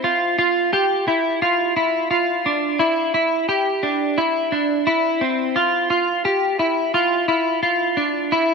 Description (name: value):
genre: dream pop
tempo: 87 BPM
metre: 4/4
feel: straight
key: unclear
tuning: A4 = 440 Hz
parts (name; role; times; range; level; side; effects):
- clean electric guitar; solo; 0.0-8.5 s; C4 to G4; -17 LUFS; equal; analog chorus, tape echo
room: moderate plate reverb, RT60 2.5 s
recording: echo-heavy mix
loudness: -17 LUFS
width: side -4 dB against mid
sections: 0.0-8.5 A section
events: none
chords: none